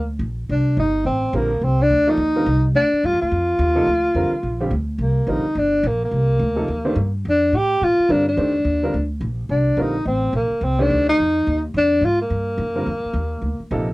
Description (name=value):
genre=modal jazz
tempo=213 BPM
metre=4/4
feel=swing 61% on 8ths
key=C dorian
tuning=A4 = 439 Hz
part: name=dark tenor saxophone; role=melody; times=0.0-13.7 s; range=Bb3 to G4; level=-19 LUFS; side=equal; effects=cassette tape
part: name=upright bass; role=bass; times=0.0-13.9 s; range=G1 to Bb2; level=-22 LUFS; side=equal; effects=none
part: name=warm upright piano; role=accompaniment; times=1.3-13.9 s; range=C3 to D5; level=-24 LUFS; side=right 1 dB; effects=none
room=light reverb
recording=home recording on cassette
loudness=-17 LUFS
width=side -20 dB against mid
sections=0.0-13.9 A section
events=none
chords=0.0 Cm9; 2.7 Bb; 5.0 Cm9; 7.2 Bb; 9.5 Cm9; 11.7 Bb